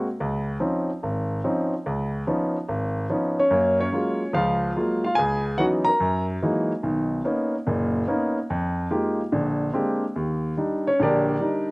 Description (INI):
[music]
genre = solo jazz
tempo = 144 BPM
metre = 4/4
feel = swing 67% on 8ths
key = unclear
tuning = A4 = 441 Hz
[part]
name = warm grand piano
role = solo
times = 0.0-11.7 s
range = F#1 to Bb5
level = -22 LUFS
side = equal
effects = slapback echo
[sound]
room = little or no reverb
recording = recorded outdoors, with no room sound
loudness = -22 LUFS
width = side -29 dB against mid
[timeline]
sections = 0.0-10.2 A section; 10.2-11.7 B section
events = grand piano solo 10.2-11.7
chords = 0.2 Dbmaj9; 1.8 Db9; 3.5 Gbmaj9; 5.2 Dbm11; 6.0 Gb13; 6.8 Bmaj9; 8.5 Fm11; 9.3 Bb13; 10.2 Ebmaj7